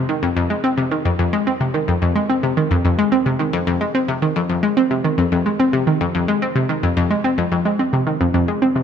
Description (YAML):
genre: ambient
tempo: 109 BPM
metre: 4/4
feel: straight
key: F minor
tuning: A4 = 440 Hz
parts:
  - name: analog pluck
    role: solo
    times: 0.0-8.8 s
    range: F2 to C4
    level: -16 LUFS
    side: equal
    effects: chorus, ping-pong delay
room: wet plate reverb, RT60 3.5 s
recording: none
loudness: -16 LUFS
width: side -8 dB against mid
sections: 0.0-7.4 A section; 7.4-8.8 B section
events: none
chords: none